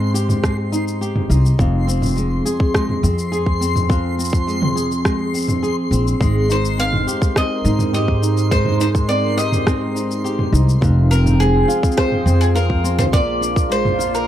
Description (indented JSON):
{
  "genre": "folktronica",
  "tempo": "104 BPM",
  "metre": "4/4",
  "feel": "straight",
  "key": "Ab lydian",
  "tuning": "A4 = 440 Hz",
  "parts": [
    { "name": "flamenco guitar", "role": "arpeggios", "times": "0.0-14.3 s", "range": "F2 to Ab4", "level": "-22 LUFS", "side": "left 1 dB", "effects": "tape echo" },
    { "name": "upright bass", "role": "bass", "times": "0.0-14.3 s", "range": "F1 to Ab2", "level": "-19 LUFS", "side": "equal", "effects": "none" },
    { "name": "backwards swelling texture", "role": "texture", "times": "0.0-14.3 s", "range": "C6", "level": "-30 LUFS", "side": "left 2 dB", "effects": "built-in reverb" },
    { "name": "organic electronic drum kit", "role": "drums", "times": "0.2-14.3 s", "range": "rim click, shaker, toms", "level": "-24 LUFS", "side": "equal", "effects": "overdrive" },
    { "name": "electronic kick drum", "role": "drums", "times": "0.4-13.7 s", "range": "none", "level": "-18 LUFS", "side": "equal", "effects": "overdrive" },
    { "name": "warm analog pad", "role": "sustained chords", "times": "6.2-14.3 s", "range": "F3 to G5", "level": "-25 LUFS", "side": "right 3 dB", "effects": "wide subtle chorus" },
    { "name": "bowl-back mandolin", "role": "melody", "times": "6.5-14.3 s", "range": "Ab4 to F5", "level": "-22 LUFS", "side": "equal", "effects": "tape echo" }
  ],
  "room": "little or no reverb",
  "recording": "dry, close 1970s-style studio recording",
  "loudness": "-15 LUFS",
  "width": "side -11 dB against mid",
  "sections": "0.0-14.3 A section",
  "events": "none",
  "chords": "0.0 Abmaj7; 1.6 Fm; 6.2 Abmaj7; 10.8 Fm7; 13.1 Bb7"
}